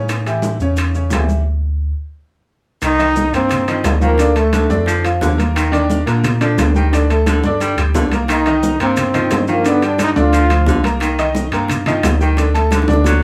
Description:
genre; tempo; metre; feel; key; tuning
latin, salsa; 176 BPM; 4/4; straight; unclear; A4 = 440 Hz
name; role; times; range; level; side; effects
bright upright piano; accompaniment; 0.0-13.2 s; C#3 to Bb5; -21 LUFS; equal; none
tine electric piano; bass; 0.0-13.2 s; C2 to Bb2; -20 LUFS; equal; none
bongos; percussion; 0.1-13.1 s; none; -29 LUFS; equal; none
congas; percussion; 0.1-13.2 s; none; -26 LUFS; equal; none
maracas; percussion; 0.1-13.2 s; none; -37 LUFS; equal; none
timbales; percussion; 0.1-13.2 s; none; -26 LUFS; equal; none
clear baritone saxophone; second line; 2.8-13.2 s; C3 to G3; -25 LUFS; equal; none
bright trombone; melody; 2.9-4.9, 8.3-10.8 s; A3 to F4; -19 LUFS; equal; none
room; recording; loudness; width
wet studio reverb, RT60 0.5 s; band playing live in one room; -16 LUFS; mono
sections
0.0-2.8 A section; 2.8-13.2 B section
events
stop 1.5-2.8; drum fill 12.7-13.2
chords
0.1 A7; 1.5 N.C.; 2.8 Cm7; 4.2 Bbmaj7/D; 5.6 Ebmaj7; 6.9 D7sus4; 8.3 Cm7; 12.4 D5

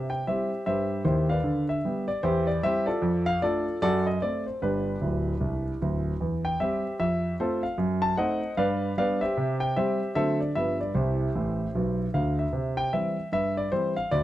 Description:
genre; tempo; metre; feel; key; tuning
jazz, stride piano; 152 BPM; 4/4; swing 62% on 8ths; C major; A4 = 440 Hz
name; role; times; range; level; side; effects
warm concert grand piano; solo; 0.0-14.2 s; D1 to A5; -24 LUFS; equal; none
room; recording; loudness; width
small room ambience; dry, close 1970s-style studio recording; -24 LUFS; side -14 dB against mid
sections
0.0-12.5 A section; 12.5-14.2 A section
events
grand piano fill 5.0-6.2, 11.4-12.5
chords
0.0 C; 1.4 G/D; 2.2 C/E; 3.0 Dm/F; 3.8 F#dim; 4.6 G; 6.2 C/E; 7.0 F; 7.8 F#dim7; 8.6 G7; 9.4 C; 10.2 D7; 10.6 G7; 11.0 C

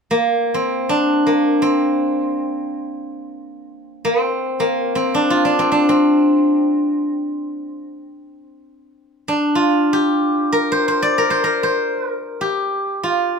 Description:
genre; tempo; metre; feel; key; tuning
chinese traditional, Chinese solo plucked strings; free time; none; none; C shang mode; A4 = 442 Hz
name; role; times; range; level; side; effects
steel-string zither; solo; 0.1-13.4 s; Bb3 to D5; -16 LUFS; equal; none
room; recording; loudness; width
light reverb; close, detailed microphones; -16 LUFS; side -5 dB against mid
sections
0.0-13.4 A section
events
none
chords
none

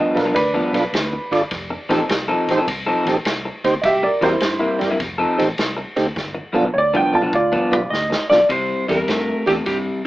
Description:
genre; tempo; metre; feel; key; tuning
electric blues shuffle; 103 BPM; 4/4; swing 67% on 8ths; unclear; A4 = 439 Hz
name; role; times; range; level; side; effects
dark upright piano; second line; 0.0-7.9 s; D4 to A5; -19 LUFS; right 1 dB; none
electric guitar through a small old amp; riff; 0.0-10.0 s; G2 to A4; -21 LUFS; left 1 dB; none
mellow tonewheel organ; accompaniment; 0.1-9.6 s; B3 to D5; -19 LUFS; right 2 dB; slow rotary speaker
vintage muted fingered electric bass; bass; 0.2-9.9 s; F1 to G2; -31 LUFS; equal; none
vintage drum kit; drums; 0.2-9.8 s; kick drum, ride cymbal, snare drum, toms; -25 LUFS; equal; none
clean lap steel guitar; melody; 7.9-9.8 s; G4 to Eb5; -18 LUFS; equal; none
room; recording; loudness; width
light reverb; band playing live in one room, AM radio sound; -16 LUFS; side -16 dB against mid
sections
0.0-8.5 A section; 8.5-10.1 B section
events
upright piano solo 0.0-8.5; drum fill 6.2-8.5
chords
0.0 G7; 1.5 F7; 3.8 C7; 5.0 F7; 6.2 G7; 8.5 C7

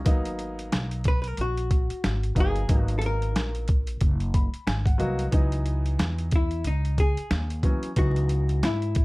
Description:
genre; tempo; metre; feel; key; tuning
hip hop, jazz-hop; 91 BPM; 4/4; swing 58% on 16ths; G# minor; A4 = 440 Hz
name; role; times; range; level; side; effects
warm upright piano; accompaniment; 0.0-8.9 s; E3 to B5; -32 LUFS; equal; none
upright bass; bass; 0.0-9.0 s; F#1 to G#2; -27 LUFS; equal; none
boom bap sampler-style drum kit; drums; 0.1-9.0 s; hi-hat, kick drum, snare drum; -24 LUFS; equal; none
archtop guitar, miked and amplified; melody; 1.1-9.0 s; D#4 to B4; -31 LUFS; left 2 dB; none
room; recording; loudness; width
little or no reverb; dark, warm production, vinyl crackle; -23 LUFS; side -22 dB against mid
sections
0.0-9.0 A section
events
upright piano fill 4.0-5.3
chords
0.1 G#m9; 5.3 C#m11

